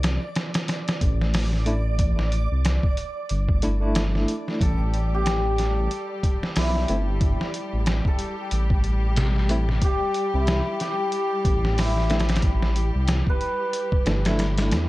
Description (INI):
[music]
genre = trip hop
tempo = 92 BPM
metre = 4/4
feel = swing 58% on 16ths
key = unclear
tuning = A4 = 440 Hz
[part]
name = dark detuned saw bass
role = bass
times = 0.0-14.9 s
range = G1 to E2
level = -23 LUFS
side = equal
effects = none
[part]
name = trip hop sampler-style drum kit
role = drums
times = 0.0-14.9 s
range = hi-hat, kick drum, snare drum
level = -24 LUFS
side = equal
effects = none
[part]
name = backwards swelling texture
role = texture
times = 0.0-14.9 s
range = D5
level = -38 LUFS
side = right 2 dB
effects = built-in reverb
[part]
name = bell-like tine electric piano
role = accompaniment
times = 1.7-14.9 s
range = A3 to E4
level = -29 LUFS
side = equal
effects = tremolo, low-pass filter, tape echo
[part]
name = cimbalom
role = melody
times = 4.6-14.9 s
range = E4 to B4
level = -28 LUFS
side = equal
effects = tape echo
[part]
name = clear symphonic string section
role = sustained chords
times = 4.6-14.9 s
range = G3 to G4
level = -33 LUFS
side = left 2 dB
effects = none
[sound]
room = little or no reverb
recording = dark, warm production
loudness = -21 LUFS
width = side -18 dB against mid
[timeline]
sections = 0.0-14.9 A section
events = filter sweep on tine electric piano 0.0-14.9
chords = 0.0 C6 (rootless); 4.6 A5; 9.8 C6 (rootless)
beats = 0.04 0.69 1.34 | 2.00 2.65 3.30 3.95 | 4.60 5.26 5.91 6.56 | 7.21 7.87 8.52 9.17 | 9.82 10.47 11.13 11.78 | 12.43 13.08 13.73 14.39